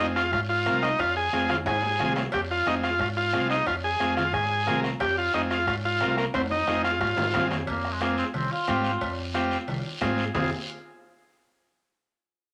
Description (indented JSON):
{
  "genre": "latin, cumbia",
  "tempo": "180 BPM",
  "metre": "4/4",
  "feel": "straight",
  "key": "F minor",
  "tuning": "A4 = 440 Hz",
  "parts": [
    { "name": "combo organ", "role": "melody", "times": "0.0-7.5 s", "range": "Bb3 to Ab4", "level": "-27 LUFS", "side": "equal", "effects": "none" },
    { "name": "overdriven combo organ", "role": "accompaniment", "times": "0.0-10.5 s", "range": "C4 to Bb4", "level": "-33 LUFS", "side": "equal", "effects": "spring reverb" },
    { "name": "fingered electric bass", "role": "bass", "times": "0.0-10.5 s", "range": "F1 to Ab2", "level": "-36 LUFS", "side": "equal", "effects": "none" },
    { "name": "bombo", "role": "percussion", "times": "0.2-10.4 s", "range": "none", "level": "-39 LUFS", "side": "equal", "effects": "none" },
    { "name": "guiro", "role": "percussion", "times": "0.2-10.4 s", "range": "none", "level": "-41 LUFS", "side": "equal", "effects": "none" },
    { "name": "congas", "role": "percussion", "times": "0.3-10.4 s", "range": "none", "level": "-39 LUFS", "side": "equal", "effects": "none" },
    { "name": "cowbell and timbales", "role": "percussion", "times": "0.3-10.4 s", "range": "none", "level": "-39 LUFS", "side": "equal", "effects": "none" },
    { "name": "mellow cor anglais", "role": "second line", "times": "7.7-10.5 s", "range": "Ab3 to Ab4", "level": "-32 LUFS", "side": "equal", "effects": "none" }
  ],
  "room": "wet studio ambience, RT60 0.5 s",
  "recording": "none",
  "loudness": "-26 LUFS",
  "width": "mono",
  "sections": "0.0-7.7 A section; 7.7-10.3 B section; 10.3-11.7 C section",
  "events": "drum fill 1.5-2.3, 6.3-7.7",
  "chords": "0.0 Fm",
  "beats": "0.33 0.66 | 0.99 1.33 1.66 2.00 | 2.33 2.67 3.00 3.33 | 3.67 4.00 4.34 4.67 | 5.00 5.34 5.67 6.01 | 6.34 6.67 7.01 7.34 | 7.68 8.01 8.35 8.68 | 9.01 9.35 9.68 10.01 | 10.35"
}